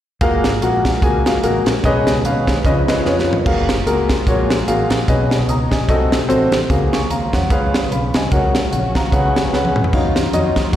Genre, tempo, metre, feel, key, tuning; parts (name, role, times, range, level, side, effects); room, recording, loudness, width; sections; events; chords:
uptempo gospel; 148 BPM; 4/4; swing 57% on 8ths; F# major; A4 = 440 Hz
warm grand piano; accompaniment; 0.2-10.8 s; B2 to D#6; -17 LUFS; left 2 dB; slapback echo
percussive tonewheel organ; sustained chords; 0.2-3.7 s; D#3 to E#5; -24 LUFS; right 5 dB; slow rotary speaker, overdrive, chorus vibrato
fingered electric bass; bass; 0.2-10.8 s; F#1 to E#2; -21 LUFS; right 1 dB
tight funk drum kit; drums; 0.2-10.8 s; crash cymbal, hi-hat, kick drum, snare drum, splash cymbal, toms; -19 LUFS; right 1 dB; slapback echo
warm studio string section; sustained chords; 3.5-10.8 s; E#3 to F#4; -27 LUFS; right 4 dB
light reverb; live gig heard through the venue's PA, recital hall reverb; -14 LUFS; side -11 dB against mid
0.2-3.5 A section; 3.5-10.8 B section
drum fill 3.1-3.5, 9.5-9.9; grand piano fill 9.3-9.9
0.2 F#maj9; 1.8 B69; 2.6 C#9; 3.5 F#maj9; 5.1 B69; 5.9 Cdim7; 6.7 F#maj9/C#; 7.5 C#7; 8.3 F#/C#; 9.1 C#7sus4; 9.9 D#m9